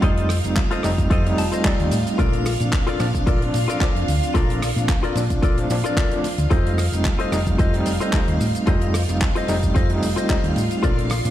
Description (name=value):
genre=nu-disco, nu disco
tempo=111 BPM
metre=4/4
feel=swing 54% on 16ths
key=F mixolydian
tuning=A4 = 440 Hz
part: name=overdriven reed electric piano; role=accompaniment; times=0.0-11.3 s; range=F3 to Eb4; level=-25 LUFS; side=right 1 dB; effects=tremolo, sidechain pumping, ping-pong delay
part: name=string machine, full ensemble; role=sustained chords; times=0.0-11.3 s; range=F4 to F5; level=-29 LUFS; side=equal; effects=ensemble chorus, sidechain pumping
part: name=direct-recorded clean electric guitar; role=riff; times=0.0-11.2 s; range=F4 to A5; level=-27 LUFS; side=left 4 dB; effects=wide subtle chorus, vintage 12-bit sampler grit, ping-pong delay
part: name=hollow-body short-scale fingered electric bass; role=bass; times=0.0-11.3 s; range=F1 to Bb2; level=-22 LUFS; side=equal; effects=sidechain pumping
part: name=damped 70s drum kit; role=drums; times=0.0-11.3 s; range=handclaps, hi-hat, rim click, shaker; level=-30 LUFS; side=right 1 dB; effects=studio ambience
part: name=electronic kick drum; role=drums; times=0.0-11.0 s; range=none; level=-21 LUFS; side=equal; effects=studio ambience
room=light reverb, small room ambience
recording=played on a big sound system in a bare room, stone room reverb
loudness=-18 LUFS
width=side -12 dB against mid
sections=0.0-11.3 A section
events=clean electric guitar fill 1.1-2.2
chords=0.0 F7; 2.2 Bbmaj7; 6.5 F7